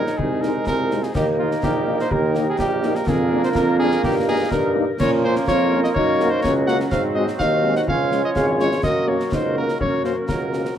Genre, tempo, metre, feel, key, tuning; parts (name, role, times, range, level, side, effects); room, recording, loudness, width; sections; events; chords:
military-style march for wind band; 125 BPM; 2/4; straight; A4 = 439 Hz
warm cornet; melody; 0.0-10.7 s; F4 to Gb5; -25 LUFS; left 1 dB
mellow woodwind section; second line; 0.0-10.8 s; D4 to Db5; -28 LUFS; left 2 dB
warm euphonium; second line; 0.0-10.7 s; C4 to Ab4; -25 LUFS; right 2 dB
mellow French horn section; accompaniment; 0.0-10.6 s; Ab3 to Gb4; -27 LUFS; left 4 dB
bright trombone section; sustained chords; 0.0-10.8 s; D3 to Db4; -27 LUFS; right 2 dB
clear tuba; bass; 0.0-10.7 s; Ab1 to Bb2; -23 LUFS; right 1 dB
concert snare drum, concert bass drum and clash cymbals; drums; 0.1-10.8 s; -28 LUFS; left 1 dB
moderate spring reverb, RT60 1.8 s; -17 LUFS; side -9 dB against mid
0.0-10.8 A section
0.2 Ab/C; 1.1 Eb; 3.1 Bb/F; 4.0 Eb/G; 5.0 Bbm; 6.0 Gb; 6.9 Ab7; 7.9 Db; 8.8 Gb